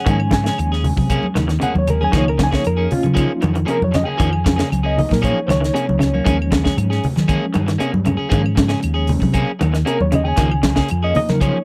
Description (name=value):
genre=afrobeat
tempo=116 BPM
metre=4/4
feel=straight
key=unclear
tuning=A4 = 440 Hz
part: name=bright reed electric piano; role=accompaniment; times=0.0-11.6 s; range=F3 to Ab5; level=-24 LUFS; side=equal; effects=fast tremolo
part: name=electric guitar at the edge of break-up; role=stabs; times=0.0-11.6 s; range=F3 to Ab4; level=-27 LUFS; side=equal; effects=subtle chorus, tape echo
part: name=electric guitar through a small old amp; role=arpeggios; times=0.1-10.9 s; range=C3 to Eb3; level=-24 LUFS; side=equal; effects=none
part: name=fingered electric bass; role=bass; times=0.1-11.5 s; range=Db2 to Eb3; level=-22 LUFS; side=equal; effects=none
part: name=tight funk drum kit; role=drums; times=0.1-11.5 s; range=hi-hat, kick drum, snare drum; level=-24 LUFS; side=equal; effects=none
part: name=claves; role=percussion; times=0.2-11.6 s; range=none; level=-36 LUFS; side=equal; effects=none
part: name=congas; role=percussion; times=0.3-11.4 s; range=none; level=-25 LUFS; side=equal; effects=none
room=little or no reverb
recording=dry, close 1970s-style studio recording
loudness=-18 LUFS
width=mono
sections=0.0-11.6 A section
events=reed electric piano solo 0.0-11.6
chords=0.0 Eb7sus4; 2.1 Db6; 6.3 Eb7sus4; 10.4 Db6